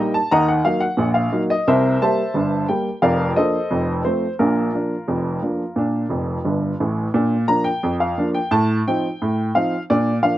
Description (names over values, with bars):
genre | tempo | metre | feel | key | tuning
ragtime piano | 88 BPM | 2/4 | straight | Bb major | A4 = 440 Hz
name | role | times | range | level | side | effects
warm upright piano | solo | 0.0-10.4 s | F1 to Bb5 | -17 LUFS | equal | none
room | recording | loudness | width
little or no reverb | recorded outdoors, with no room sound | -17 LUFS | side -14 dB against mid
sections
0.0-7.2 A section; 7.2-10.4 B section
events
upright piano fill 6.1-7.2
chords
0.3 Ebm; 1.7 C7; 3.0 Bb/F; 3.7 F7; 4.4 Bb; 8.5 F7/A; 9.9 Bb